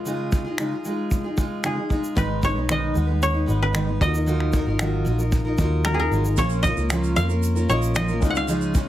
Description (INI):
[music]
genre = acoustic pop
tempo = 114 BPM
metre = 4/4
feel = straight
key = unclear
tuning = A4 = 435 Hz
[part]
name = koto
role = melody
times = 0.0-8.9 s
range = E#4 to F#5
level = -26 LUFS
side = equal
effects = none
[part]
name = picked steel-string acoustic guitar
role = accompaniment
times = 0.0-8.9 s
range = G#2 to B4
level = -25 LUFS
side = equal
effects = none
[part]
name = soft brush drum kit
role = drums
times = 0.1-8.9 s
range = finger snaps, kick drum, shaker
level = -25 LUFS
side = equal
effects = none
[part]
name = vintage muted fingered electric bass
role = bass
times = 2.2-8.8 s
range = G#1 to E#2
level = -23 LUFS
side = equal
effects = none
[part]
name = felt-muted upright piano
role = accompaniment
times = 6.4-8.9 s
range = A#3 to D#5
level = -34 LUFS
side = left 4 dB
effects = none
[part]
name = tube shaker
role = percussion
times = 6.4-8.9 s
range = none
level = -39 LUFS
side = right 8 dB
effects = none
[sound]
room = little or no reverb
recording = heavily compressed radio sound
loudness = -20 LUFS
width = side -13 dB against mid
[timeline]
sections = 0.0-2.2 A section; 2.2-8.9 B section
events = none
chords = 0.0 C#add9; 2.2 G#m; 4.0 D#madd9; 6.4 A#m; 8.2 C#add9